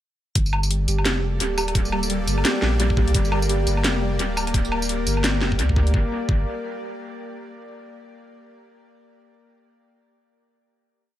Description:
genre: half-time drum and bass.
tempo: 172 BPM.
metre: 4/4.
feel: swing 60% on 16ths, half-time.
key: G minor.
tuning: A4 = 440 Hz.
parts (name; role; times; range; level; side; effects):
bowed-like drone; sustained chords; 0.9-6.1 s; Bb3 to D5; -29 LUFS; left 2 dB; built-in reverb, sidechain pumping.
saturated sub bass; bass; 0.4-6.5 s; D1 to D2; -23 LUFS; equal; none.
drum and bass drum kit; drums; 0.4-5.9 s; hi-hat, snare drum, tambourine, woodblock; -25 LUFS; equal; dub echo.
electronic kick drum; drums; 0.4-6.4 s; none; -22 LUFS; equal; none.
pulsing gated texture; texture; 0.4-5.9 s; G3 to G4; -30 LUFS; right 3 dB; chorus, built-in reverb.
room: light reverb.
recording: echo-heavy mix.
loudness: -19 LUFS.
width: side -12 dB against mid.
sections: 0.4-5.9 drop; 5.9-7.3 final chord.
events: drop 0.4-5.9.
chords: 0.4 Gmadd9.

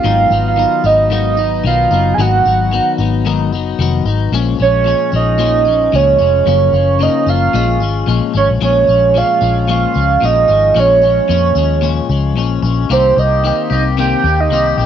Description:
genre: indie pop, bedroom pop.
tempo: 112 BPM.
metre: 4/4.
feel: swing 55% on 16ths.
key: Bb phrygian, Bb dorian from 8.6 s.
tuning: A4 = 440 Hz.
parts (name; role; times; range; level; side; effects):
soft octave-layered synth lead; melody; 0.0-14.9 s; C5 to Ab5; -13 LUFS; right 5 dB; phaser, lush chorus, cassette tape, analog delay.
clean electric guitar; accompaniment; 0.0-14.9 s; Gb2 to G4; -18 LUFS; left 12 dB; analog chorus, vibrato effect, cassette tape.
vintage muted fingered electric bass; bass; 0.0-14.9 s; F1 to F2; -16 LUFS; left 2 dB; none.
room: moderate studio reverb, RT60 0.5 s.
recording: home recording on cassette, nothing above 7.5 kHz.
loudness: -11 LUFS.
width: side -9 dB against mid.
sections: 0.0-8.6 A section; 8.6-14.9 B section.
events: none.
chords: 0.0 Abm7; 4.3 Bbm7; 6.5 Gbmaj7; 7.5 Bbm7; 12.9 Cm7.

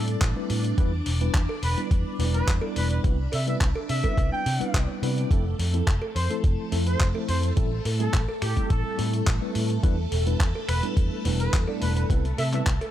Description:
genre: nu-disco, nu disco.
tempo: 106 BPM.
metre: 4/4.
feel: straight.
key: A minor.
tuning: A4 = 440 Hz.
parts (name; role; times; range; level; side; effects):
mellow trumpet section; melody; 0.0-12.6 s; G4 to G5; -34 LUFS; right 1 dB; ping-pong delay.
tine electric piano; accompaniment; 0.0-12.7 s; F3 to D5; -31 LUFS; left 1 dB; overdrive, medium stereo tremolo, sidechain pumping, digital delay.
string machine, full ensemble; sustained chords; 0.0-12.9 s; A3 to D5; -35 LUFS; equal; phaser, ensemble chorus, sidechain pumping.
picked electric bass with an envelope filter; bass; 0.0-12.8 s; E1 to C3; -26 LUFS; equal; sidechain pumping.
dusty soul sampler-style drum kit; drums; 0.1-12.9 s; finger snaps, handclaps, hi-hat; -33 LUFS; left 1 dB; studio reverb.
electronic kick drum; drums; 0.2-12.8 s; none; -23 LUFS; equal; studio reverb.
cowbell; percussion; 1.5-12.9 s; none; -35 LUFS; right 4 dB; none.
room: little or no reverb.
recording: none.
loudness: -22 LUFS.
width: side -12 dB against mid.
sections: 0.0-12.9 A section.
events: none.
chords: 0.0 Am7; 0.8 Em7; 3.0 Cmaj7; 5.3 Fmaj7; 7.6 Am7; 9.8 Em7; 12.1 Cmaj7.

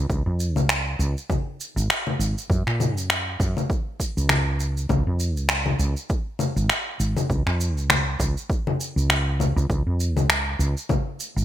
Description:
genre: sunset chillout.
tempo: 100 BPM.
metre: 4/4.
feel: swing 57% on 16ths.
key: Db major.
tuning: A4 = 440 Hz.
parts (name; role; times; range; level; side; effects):
woody fretless electric bass; bass; 0.0-11.4 s; Ab1 to Bb2; -23 LUFS; equal; none.
electronic kick drum; drums; 0.1-11.0 s; none; -26 LUFS; equal; none.
electronic shaker, congas and finger snaps; drums; 0.1-11.4 s; none; -23 LUFS; left 1 dB; gated reverb.
room: little or no reverb.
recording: bright 1980s-style digital production.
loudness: -21 LUFS.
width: side -12 dB against mid.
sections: 0.0-11.4 A section.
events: none.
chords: none.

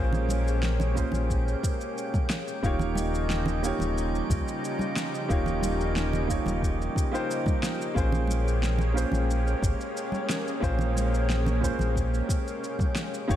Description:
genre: sunset chillout.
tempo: 90 BPM.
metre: 4/4.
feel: straight.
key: Bb dorian.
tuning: A4 = 440 Hz.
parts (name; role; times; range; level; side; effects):
warm baby grand piano; accompaniment; 0.0-13.4 s; Bb3 to Db5; -32 LUFS; right 2 dB; auto-pan, tape echo.
lush unison pad; sustained chords; 0.0-13.4 s; Db3 to Eb4; -33 LUFS; left 1 dB; chorus.
round analog bass; bass; 0.0-13.4 s; Eb1 to Db2; -27 LUFS; equal; none.
drifting glass-harmonics texture; texture; 0.0-13.4 s; G4 to G5; -40 LUFS; right 2 dB; chorus, built-in reverb.
electronic shaker and snare drum; drums; 0.1-13.4 s; none; -34 LUFS; equal; studio reverb.
congas; percussion; 0.1-12.9 s; none; -34 LUFS; right 2 dB; none.
electronic kick drum; drums; 1.0-13.4 s; none; -28 LUFS; equal; studio reverb.
room: light reverb, digital ambience.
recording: none.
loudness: -25 LUFS.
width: side -11 dB against mid.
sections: 0.0-13.4 A section.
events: none.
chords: 0.0 Bbm9; 2.6 Eb9; 8.0 Bbm9.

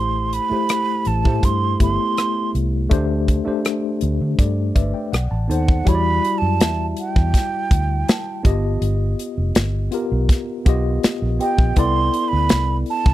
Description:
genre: lush 1970s-style soul.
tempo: 81 BPM.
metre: 4/4.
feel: straight.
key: E minor.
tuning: A4 = 440 Hz.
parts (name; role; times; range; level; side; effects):
breathy mellow silver concert flute; melody; 0.0-13.1 s; F#5 to C6; -22 LUFS; right 5 dB; none.
tine electric piano; accompaniment; 0.0-13.1 s; G3 to A5; -24 LUFS; left 3 dB; overdrive, fast stereo tremolo.
vintage muted fingered electric bass; bass; 0.0-13.1 s; F1 to D3; -21 LUFS; equal; none.
modern studio drum kit; drums; 0.3-13.1 s; hi-hat, kick drum, rim click, snare drum; -17 LUFS; equal; none.
celesta; texture; 6.6-12.1 s; E5 to A5; -32 LUFS; right 1 dB; none.
room: little or no reverb.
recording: dry, close 1970s-style studio recording.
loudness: -17 LUFS.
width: side -14 dB against mid.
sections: 0.0-5.9 A section; 5.9-13.1 B section.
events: tine electric piano fill 4.4-5.9.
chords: 0.0 Am7; 2.9 D7sus4; 5.1 B7b9; 5.9 Em9; 8.4 G7alt; 11.8 Cmaj13.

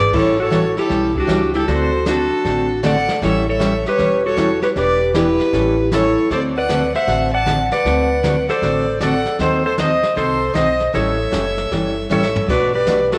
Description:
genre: country, western swing.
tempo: 155 BPM.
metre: 4/4.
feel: swing 65% on 8ths.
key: A mixolydian.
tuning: A4 = 440 Hz.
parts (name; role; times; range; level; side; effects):
clean lap steel guitar; melody; 0.0-13.2 s; D4 to F#5; -20 LUFS; equal; none.
clear fiddle; second line; 0.0-13.2 s; G4 to A5; -25 LUFS; equal; none.
upright bass; bass; 0.0-13.1 s; E1 to D#2; -28 LUFS; equal; none.
jazz brush drum kit; drums; 0.0-13.2 s; brushed snare drum, crash cymbal, hi-hat, kick drum, snare drum, toms; -30 LUFS; equal; none.
picked steel-string acoustic guitar; accompaniment; 0.1-13.0 s; B2 to A4; -24 LUFS; equal; none.
room: wet echo chamber reverb, RT60 1.7 s, small room ambience.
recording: none.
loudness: -17 LUFS.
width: mono.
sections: 0.1-13.2 A section.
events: drum fill 12.1-12.5.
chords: 0.1 A7; 1.7 D7; 3.2 A7; 4.8 Em7; 5.5 A7; 6.3 D7; 9.4 D#dim7; 10.9 A7; 12.5 Bm7.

